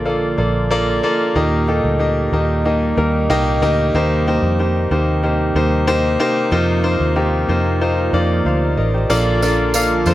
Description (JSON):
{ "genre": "piano-driven pop", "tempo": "93 BPM", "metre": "4/4", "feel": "straight", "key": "Bb major", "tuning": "A4 = 436 Hz", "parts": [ { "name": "clear baby grand piano", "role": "accompaniment", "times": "0.0-10.1 s", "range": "Bb2 to F5", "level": "-16 LUFS", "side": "left 1 dB", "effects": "none" }, { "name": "chorused pulse-width pad", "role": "sustained chords", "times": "0.0-10.1 s", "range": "Bb2 to A4", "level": "-26 LUFS", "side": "right 2 dB", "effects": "none" }, { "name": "vintage muted fingered electric bass", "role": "bass", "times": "0.0-10.1 s", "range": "A1 to F2", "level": "-19 LUFS", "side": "equal", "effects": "none" }, { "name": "tambourine", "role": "percussion", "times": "9.1-10.1 s", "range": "none", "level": "-26 LUFS", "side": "right 6 dB", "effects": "none" } ], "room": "moderate large studio reverb, RT60 1.1 s", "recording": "none", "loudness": "-14 LUFS", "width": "side -15 dB against mid", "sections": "0.0-9.1 A section; 9.1-10.1 B section", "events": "none", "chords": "0.0 Bbmaj7; 1.4 Eb; 3.9 Cm7/Eb; 6.5 F7sus4; 9.1 Bbmaj7" }